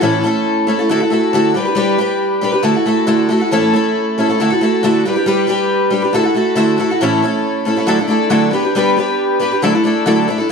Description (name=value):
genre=rock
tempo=138 BPM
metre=4/4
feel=straight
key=unclear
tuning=A4 = 440 Hz
part: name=picked twelve-string acoustic guitar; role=solo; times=0.0-10.5 s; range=A2 to B4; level=-12 LUFS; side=equal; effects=none
room=moderate echo chamber reverb, RT60 1.7 s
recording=dark, warm production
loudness=-12 LUFS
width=side -5 dB against mid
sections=0.0-3.5 A section; 3.5-10.5 A section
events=none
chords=0.0 A; 0.9 Dadd9; 1.6 G; 2.6 Dadd9; 3.5 A; 4.4 Dadd9; 5.0 G; 6.1 Dadd9; 7.0 A; 7.9 Dadd9; 8.5 G; 9.6 Dadd9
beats=| 0.03 0.47 0.90 1.34 | 1.77 2.21 2.65 3.08 | 3.52 3.96 4.39 4.83 | 5.26 5.70 6.13 6.57 | 7.01 7.44 7.88 8.31 | 8.75 9.19 9.62 10.06 | 10.49